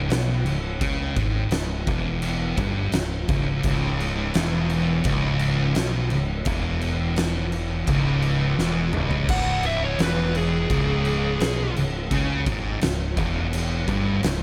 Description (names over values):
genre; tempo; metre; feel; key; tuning
stoner and doom metal; 85 BPM; 4/4; straight; C# minor; A4 = 440 Hz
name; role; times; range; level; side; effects
thick fuzz guitar; riff; 0.0-14.4 s; C#2 to C#3; -29 LUFS; equal; distortion
growling fingered electric bass; bass; 0.0-14.4 s; C#1 to C#2; -30 LUFS; equal; overdrive, tube saturation
oversized low-tuned drum kit; drums; 0.1-14.4 s; crash cymbal, kick drum, snare drum, toms; -29 LUFS; equal; none
thick fuzz guitar; riff; 3.6-14.4 s; C#2 to C#3; -30 LUFS; equal; distortion
fuzz lead guitar; melody; 9.3-11.7 s; G#4 to F#5; -30 LUFS; equal; distortion, delay
room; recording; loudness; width
studio reverb; none; -23 LUFS; mono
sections
0.0-9.3 A section; 9.3-14.4 B section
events
drum fill 8.6-9.3; lead electric guitar solo 9.3-14.4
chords
0.0 C#m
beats
0.11 | 0.81 1.52 2.23 2.94 | 3.64 4.35 5.05 5.76 | 6.47 7.17 7.88 8.58 | 9.29 9.99 10.70 11.40 | 12.11 12.81 13.52 14.22